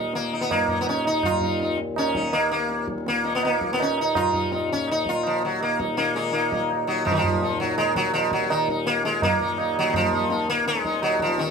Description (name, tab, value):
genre	indian classical, Hindustani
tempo	165 BPM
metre	4/4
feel	straight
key	Eb raga darbari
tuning	A4 = 442 Hz
part	sitar	melody	0.0-11.5 s	Eb3 to F4	-23 LUFS	left 2 dB	none
part	hand-pumped harmonium	drone	0.0-11.5 s	Eb2 to Bb2	-30 LUFS	left 2 dB	none
part	tabla	percussion	0.1-11.5 s	none	-26 LUFS	right 6 dB	none
room	light reverb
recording	close, detailed microphones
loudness	-21 LUFS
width	side -5 dB against mid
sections	0.0-7.1 A section; 7.1-11.5 B section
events	speeding up 0.0-11.5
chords	none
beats	0.13 0.50 0.86 | 1.23 1.60 1.97 2.33 | 2.70 3.07 3.43 3.80 | 4.16 4.53 4.89 5.25 | 5.62 5.98 6.34 6.70 | 7.06 7.42 7.79 8.15 | 8.51 8.87 9.22 9.58 | 9.94 10.30 10.66 11.01 | 11.37